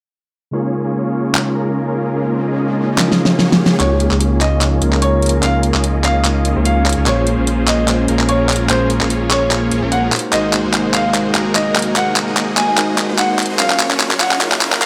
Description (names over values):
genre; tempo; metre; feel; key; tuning
future bass; 147 BPM; 4/4; swing 54% on 16ths, half-time; Db major; A4 = 439 Hz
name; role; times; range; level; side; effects
mellow tine electric piano; accompaniment; 0.5-14.9 s; Bb2 to C6; -23 LUFS; equal; none
airy breathy pad; sustained chords; 1.0-14.9 s; C3 to F5; -29 LUFS; equal; none
supersaw chords; riff; 0.5-14.9 s; Bb3 to Eb5; -22 LUFS; equal; low-pass filter
riser; sound effects; 1.9-3.8, 12.8-14.9 s; none; -32 LUFS; equal; none
pop drum kit; drums; 1.3-14.9 s; handclaps, hi-hat, snare drum; -19 LUFS; equal; studio ambience
clear concert grand piano; melody; 3.8-14.9 s; C5 to Ab5; -22 LUFS; equal; delay
saturated sub bass; bass; 3.8-14.9 s; Gb1 to Db2; -23 LUFS; equal; none
room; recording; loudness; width
moderate digital room reverb, RT60 1.0 s, digital ambience; high-pass filter; -15 LUFS; mono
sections
0.5-3.8 A section; 3.8-14.9 B section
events
riser 1.9-3.8; drum fill 3.0-3.8, 3.8-14.9; build-up 3.8-14.9; filter sweep on supersaw synth 3.8-14.9; filter sweep 3.8-14.9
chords
0.5 Db6; 7.1 Bbm9; 10.1 Ab9; 13.6 Gbmaj7